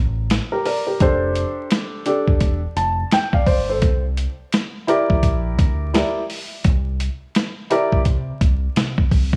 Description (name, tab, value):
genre	hip hop, jazz-hop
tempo	85 BPM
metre	4/4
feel	swing 61% on 16ths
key	unclear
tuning	A4 = 440 Hz
part	deep dub fingered electric bass	bass	0.0-9.4 s	E1 to C3	-25 LUFS	equal	none
part	boom bap sampler-style drum kit	drums	0.3-9.4 s	hi-hat, kick drum, snare drum	-21 LUFS	equal	none
part	dark baby grand piano	accompaniment	0.5-8.0 s	D4 to A5	-23 LUFS	equal	none
room	light reverb, digital ambience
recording	vinyl crackle, small room ambience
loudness	-20 LUFS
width	mono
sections	0.0-9.4 A section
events	grand piano fill 2.4-3.8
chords	0.0 Gmadd9; 1.0 F69; 3.8 C9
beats	0.30 | 1.00 1.71 2.41 3.12 | 3.83 4.53 5.24 5.94 | 6.65 7.36 8.06 8.77